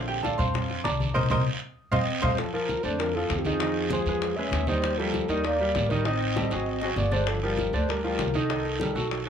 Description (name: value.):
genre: Afro-Cuban jazz.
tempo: 196 BPM.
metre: 4/4.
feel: straight.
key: Bb major.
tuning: A4 = 439 Hz.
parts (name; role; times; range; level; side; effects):
clear baby grand piano; accompaniment; 0.0-9.3 s; D3 to D6; -30 LUFS; right 2 dB; none.
upright bass; bass; 0.0-9.3 s; G1 to F2; -30 LUFS; equal; none.
bongos; percussion; 0.1-9.3 s; none; -36 LUFS; left 7 dB; none.
congas; percussion; 0.1-9.3 s; none; -32 LUFS; equal; none.
guiro; percussion; 0.2-9.3 s; none; -36 LUFS; right 4 dB; none.
breathy flute-like synth lead; melody; 1.9-9.3 s; G4 to E5; -30 LUFS; left 1 dB; chorus.
breathy trombone; second line; 1.9-9.3 s; Eb3 to C#4; -34 LUFS; left 3 dB; none.
room: light reverb.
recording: small room ambience.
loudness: -24 LUFS.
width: side -8 dB against mid.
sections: 0.0-2.4 A section; 2.4-9.3 B section.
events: grand piano solo 0.0-2.4; band accent 1.2-2.4; drum fill 1.8-2.4, 6.5-7.3.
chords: 0.0 Bbmaj9; 1.2 Cm7; 1.8 F5; 2.4 Bbmaj7; 3.6 Fm7; 4.2 E6; 4.8 Ebmaj9; 6.0 Am7b5; 6.7 Ab7#11; 7.3 Gm7; 8.5 Cm7.